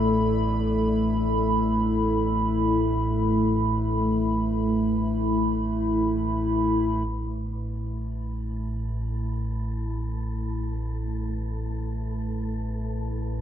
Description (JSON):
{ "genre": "dark ambient drone", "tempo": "free time", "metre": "none", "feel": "none", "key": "unclear", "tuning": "A4 = 441 Hz", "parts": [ { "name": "dark analog pad", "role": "sustained chords", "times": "0.0-13.4 s", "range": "A3 to B5", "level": "-25 LUFS", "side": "equal", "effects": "chorus, phaser" }, { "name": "deep rumbling drone", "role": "drone", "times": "0.0-13.4 s", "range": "A1 to A2", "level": "-28 LUFS", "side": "equal", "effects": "built-in reverb" }, { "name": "wind-like tuned noise texture", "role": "texture", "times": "0.0-13.4 s", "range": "A3 to A4", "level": "-44 LUFS", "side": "left 1 dB", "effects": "built-in reverb" } ], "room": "wet plate reverb, RT60 2.4 s", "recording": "dreamy mix soaked in reverb", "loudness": "-23 LUFS", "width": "side -9 dB against mid", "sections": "0.0-7.1 A section; 7.1-13.4 B section", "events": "none", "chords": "0.0 Asus2", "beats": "free time" }